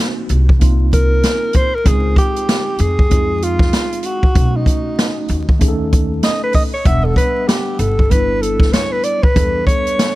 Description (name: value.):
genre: hip hop, jazz-hop.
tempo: 96 BPM.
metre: 4/4.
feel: swing 61% on 16ths.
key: unclear.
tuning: A4 = 440 Hz.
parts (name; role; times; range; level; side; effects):
mellow tine electric piano; accompaniment; 0.0-10.2 s; G3 to F#5; -24 LUFS; equal; medium stereo tremolo.
upright bass; bass; 0.3-9.6 s; E1 to E#2; -17 LUFS; equal; none.
open jazz drum kit; drums; 0.3-10.2 s; hi-hat, kick drum, snare drum; -15 LUFS; equal; none.
breathy alto saxophone; melody; 0.9-10.2 s; D#4 to E5; -19 LUFS; equal; analog delay.
room: little or no reverb.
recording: vinyl crackle.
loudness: -13 LUFS.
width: side -17 dB against mid.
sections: 0.0-10.2 A section.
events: alto saxophone solo 0.0-10.2.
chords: 0.0 G#7 (rootless); 1.9 C#maj7 (rootless); 4.4 B7 (rootless); 6.9 Em9.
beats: 0.61 1.23 | 1.86 2.48 3.11 3.73 | 4.36 4.98 5.61 6.23 | 6.86 7.48 8.11 8.73 | 9.36 9.98.